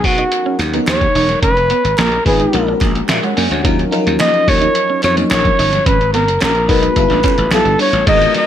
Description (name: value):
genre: polished 1980s jazz-funk pop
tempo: 108 BPM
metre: 4/4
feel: straight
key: unclear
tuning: A4 = 437 Hz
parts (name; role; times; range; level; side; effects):
- breathy flugelhorn; melody; 0.0-8.5 s; F#4 to D#5; -15 LUFS; equal; none
- FM electric piano with soft pad layer; accompaniment; 0.0-8.5 s; E#3 to G#5; -19 LUFS; left 3 dB; lush chorus
- electric guitar at the edge of break-up; riff; 0.0-8.4 s; G#3 to D#4; -23 LUFS; right 6 dB; analog chorus
- slap bass; bass; 0.0-8.3 s; E1 to B2; -18 LUFS; equal; none
- lo-fi sampler-style drum kit; drums; 0.0-8.5 s; crash cymbal, hi-hat, kick drum, snare drum; -18 LUFS; equal; gated reverb
- group handclap; percussion; 0.6-7.6 s; none; -30 LUFS; right 3 dB; none
- warm horn section; second line; 8.1-8.5 s; B3 to D#5; -22 LUFS; right 2 dB; none
room: light reverb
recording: none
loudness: -11 LUFS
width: side -10 dB against mid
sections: 0.0-8.1 A section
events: none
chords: 0.0 Bmaj9; 1.4 Fm7b5; 2.5 A#7alt; 3.6 D#m9; 5.9 G#m9; 7.0 G13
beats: 0.32 0.87 | 1.43 1.98 2.54 3.09 | 3.65 4.20 4.75 5.31 | 5.86 6.41 6.97 7.52 | 8.07